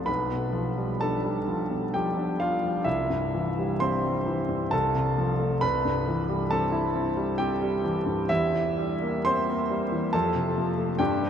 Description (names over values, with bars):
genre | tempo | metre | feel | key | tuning
classical, romantic character piece for solo piano | 66 BPM | 3/4 | uneven beats, rubato | C major, F major from 8.3 s | A4 = 440 Hz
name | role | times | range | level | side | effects
warm concert grand piano | solo | 0.0-11.3 s | B1 to C6 | -24 LUFS | equal | none
room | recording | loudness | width
wet huge ambient reverb, RT60 7.5 s | in a vast, echoing space | -24 LUFS | side -8 dB against mid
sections
0.0-11.3 A section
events
none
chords
0.1 G7/B; 2.9 C; 4.7 F/C; 5.6 C; 8.3 C7/E; 10.1 F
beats
| 0.08 1.01 1.93 | 2.86 3.82 4.72 | 5.63 6.51 7.39 | 8.29 9.26 10.13 | 10.99